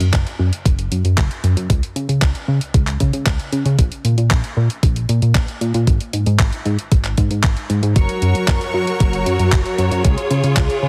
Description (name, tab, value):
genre	italo disco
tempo	115 BPM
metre	4/4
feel	straight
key	unclear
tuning	A4 = 440 Hz
part	chorused synth bass	bass	0.0-10.9 s	F#1 to C#3	-20 LUFS	equal	tube saturation
part	clean 12-bit digital drum machine	drums	0.0-10.8 s	handclaps, hi-hat	-27 LUFS	equal	none
part	electronic kick drum	drums	0.1-10.7 s	none	-18 LUFS	equal	none
part	bright studio string section	sustained chords	8.0-10.9 s	F#3 to C#6	-22 LUFS	equal	none
room	light reverb, digital ambience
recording	heavily compressed radio sound, multiband compression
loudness	-17 LUFS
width	mono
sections	0.0-10.9 A section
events	none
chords	0.0 N.C.; 8.0 F#; 10.0 C#